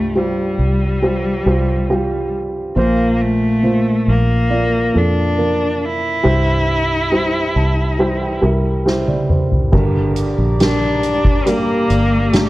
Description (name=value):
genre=pop ballad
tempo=69 BPM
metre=4/4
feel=straight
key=unclear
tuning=A4 = 438 Hz
part: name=rich cello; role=melody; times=0.0-12.5 s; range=G3 to E4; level=-18 LUFS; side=left 1 dB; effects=none
part: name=dark baby grand piano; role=accompaniment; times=0.0-12.5 s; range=G2 to A5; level=-19 LUFS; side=right 1 dB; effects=none
part: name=fingered electric bass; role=bass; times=0.0-12.5 s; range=G1 to F2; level=-19 LUFS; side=equal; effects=none
part: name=soft-mallet drum kit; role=drums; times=8.9-12.5 s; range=crash cymbal, hi-hat, kick drum, snare drum, toms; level=-17 LUFS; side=equal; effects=none
part: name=chorused pulse-width pad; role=sustained chords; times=9.7-12.5 s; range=G4 to D6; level=-25 LUFS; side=equal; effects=none
room=small room ambience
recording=worn, warbling old tape, cassette tape, warbly pitch drift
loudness=-14 LUFS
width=side -18 dB against mid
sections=0.0-9.7 A section; 9.7-12.5 B section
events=grand piano fill 7.1-9.7; drum fill 8.9-9.7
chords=0.0 Csus4; 2.8 Bbsus2; 6.2 C; 9.7 Gm